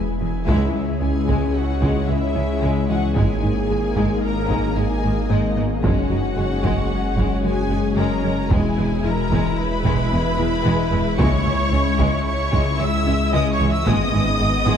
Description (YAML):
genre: cinematic, hybrid orchestral and electronic film score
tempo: 112 BPM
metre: 5/4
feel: straight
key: unclear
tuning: A4 = 440 Hz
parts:
  - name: warm symphonic violin section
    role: melody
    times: 0.0-14.8 s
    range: D#5 to E6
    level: -29 LUFS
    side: left 4 dB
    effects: none
  - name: rich symphonic viola section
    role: accompaniment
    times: 0.0-14.8 s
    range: D#4 to E5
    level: -28 LUFS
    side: right 2 dB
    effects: none
  - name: ethereal airy pad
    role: sustained chords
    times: 0.0-14.8 s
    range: G#3 to E5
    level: -28 LUFS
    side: left 2 dB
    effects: ensemble chorus, built-in reverb
  - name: thumb-piano-like synth pluck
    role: arpeggios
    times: 0.0-14.8 s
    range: C#3 to G#4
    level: -27 LUFS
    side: left 5 dB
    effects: chorus
  - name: detuned saw bass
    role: bass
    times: 0.0-14.8 s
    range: E1 to C#2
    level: -25 LUFS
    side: equal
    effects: none
  - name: rich symphonic cello section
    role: bass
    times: 0.0-14.7 s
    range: C#2 to G#2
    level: -26 LUFS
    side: right 3 dB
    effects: none
  - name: warm symphonic violin section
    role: second line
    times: 0.5-14.8 s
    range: G#3 to E4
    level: -29 LUFS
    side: left 3 dB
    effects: none
  - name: mellow French horn section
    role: sustained chords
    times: 0.5-14.8 s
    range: G#3 to E4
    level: -28 LUFS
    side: left 3 dB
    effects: none
  - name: clear symphonic double bass section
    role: bass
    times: 0.5-14.8 s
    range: E1 to C#2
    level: -26 LUFS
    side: right 4 dB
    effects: none
  - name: taiko ensemble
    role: drums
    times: 0.5-14.8 s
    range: none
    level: -25 LUFS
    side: equal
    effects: none
room: moderate scoring stage reverb, RT60 2.0 s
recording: dark, warm production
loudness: -17 LUFS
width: side -8 dB against mid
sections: 0.5-14.8 A section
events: band accent 0.5-1.0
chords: 0.5 C#m; 3.2 G#sus2; 5.8 F#sus2; 8.5 E; 11.2 C#m; 13.9 G#m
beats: | 0.48 1.02 1.55 2.09 2.62 | 3.16 3.69 4.23 4.77 5.30 | 5.84 6.37 6.91 7.44 7.98 | 8.52 9.05 9.59 10.12 10.66 | 11.19 11.73 12.27 12.80 13.34 | 13.87 14.41